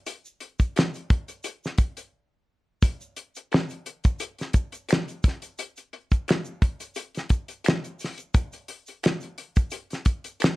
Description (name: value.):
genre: R&B.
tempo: 87 BPM.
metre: 4/4.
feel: swing 53% on 16ths.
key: none.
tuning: none.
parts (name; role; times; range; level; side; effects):
damped 70s drum kit; drums; 0.1-10.6 s; hi-hat, kick drum, snare drum; -22 LUFS; equal; none.
tube shaker and finger snaps; percussion; 0.1-10.6 s; none; -37 LUFS; right 4 dB; none.
room: light reverb.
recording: worn, warbling old tape, cassette tape, warbly pitch drift.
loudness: -24 LUFS.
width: side -20 dB against mid.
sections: 0.0-10.6 A section.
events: break 2.1-2.8.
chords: none.